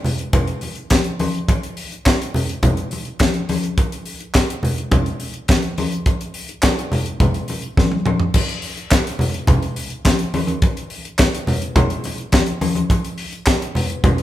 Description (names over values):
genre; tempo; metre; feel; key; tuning
disco; 105 BPM; 4/4; straight; none; none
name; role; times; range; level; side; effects
congas; percussion; 0.0-14.2 s; none; -20 LUFS; left 1 dB; none
tight funk drum kit; drums; 0.1-14.2 s; crash cymbal, handclaps, hi-hat, kick drum, snare drum, toms; -18 LUFS; equal; none
room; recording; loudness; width
wet large studio reverb, RT60 1.3 s; band playing live in one room; -17 LUFS; side -13 dB against mid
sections
0.0-8.3 A section; 8.3-14.2 B section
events
drum fill 7.8-8.3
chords
none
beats
0.34 0.91 | 1.48 2.06 2.63 3.20 | 3.77 4.35 4.92 5.49 | 6.06 6.63 7.20 7.78 | 8.35 8.91 9.48 10.05 | 10.62 11.19 11.76 12.33 | 12.90 13.47 14.04